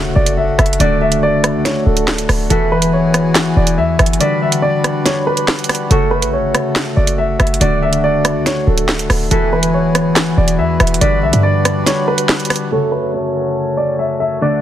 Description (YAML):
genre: hip hop, drill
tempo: 141 BPM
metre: 4/4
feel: half-time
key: F# minor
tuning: A4 = 440 Hz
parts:
  - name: dark baby grand piano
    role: melody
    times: 0.0-14.6 s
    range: A4 to E5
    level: -18 LUFS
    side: right 1 dB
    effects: low-pass filter, digital delay
  - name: concert harp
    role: accompaniment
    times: 0.0-14.6 s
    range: C#3 to D5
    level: -18 LUFS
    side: left 2 dB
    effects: low-pass filter
  - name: hand-pumped harmonium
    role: sustained chords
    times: 0.0-14.6 s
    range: D2 to B4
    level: -24 LUFS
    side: equal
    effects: low-pass filter
  - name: impact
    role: sound effects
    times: 0.0-0.8 s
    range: none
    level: -32 LUFS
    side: equal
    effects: none
  - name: short 808-style bass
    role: bass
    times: 0.2-11.8 s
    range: D1 to G2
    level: -17 LUFS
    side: equal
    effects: none
  - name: drill drum kit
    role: drums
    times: 0.3-12.6 s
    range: handclaps, hi-hat, rim click, snare drum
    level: -16 LUFS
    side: right 1 dB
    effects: soft clipping on snare
room: light reverb, small room ambience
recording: dense, heavily limited modern master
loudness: -12 LUFS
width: side -11 dB against mid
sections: 0.0-12.7 A section; 12.7-14.6 B section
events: impact 0.0-0.8; break 4.2-5.9, 11.9-12.7; filter sweep 12.7-14.6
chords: 0.0 F#m; 0.8 D; 2.5 Eadd9; 4.2 Gmaj7; 5.9 F#m; 7.6 D; 9.3 Eadd9; 11.0 Gmaj7; 12.7 F#m